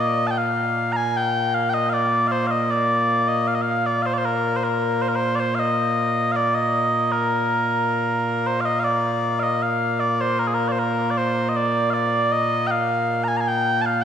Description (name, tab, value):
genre	scottish traditional, Scottish pipe music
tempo	78 BPM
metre	2/4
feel	straight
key	Bb major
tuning	A4 = 440 Hz
part	mellow small bagpipes	solo	0.0-14.0 s	Bb2 to Bb5	-19 LUFS	equal	none
room	wet church reverb, RT60 3.0 s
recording	recorded in a church or concert hall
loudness	-19 LUFS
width	side -8 dB against mid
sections	0.0-8.9 A section; 8.9-14.0 A section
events	none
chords	none